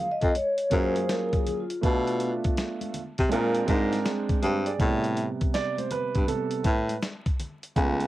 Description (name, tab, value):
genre	hip hop, jazz-hop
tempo	81 BPM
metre	4/4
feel	swing 65% on 16ths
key	unclear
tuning	A4 = 440 Hz
part	vibraphone with soft mallets	melody	0.0-2.7 s	E#4 to E#5	-28 LUFS	left 2 dB	cassette tape
part	dark baby grand piano	accompaniment	0.0-8.1 s	C3 to D5	-29 LUFS	right 4 dB	cassette tape
part	breathy baritone saxophone	bass	0.2-8.1 s	C#2 to C3	-26 LUFS	left 1 dB	none
part	dusty soul sampler-style drum kit	drums	0.2-8.1 s	hi-hat, kick drum, snare drum	-28 LUFS	equal	cassette tape
part	egg shaker and congas	percussion	0.2-8.1 s	none	-43 LUFS	left 5 dB	none
room	light reverb, small room ambience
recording	home recording on cassette, vinyl crackle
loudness	-24 LUFS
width	side -15 dB against mid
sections	0.0-4.8 A section; 4.8-8.1 A section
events	vibraphone solo 0.0-4.8; grand piano solo 4.8-8.1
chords	0.0 F#maj9; 1.8 Bm7b5; 3.3 Bb9; 4.8 Am9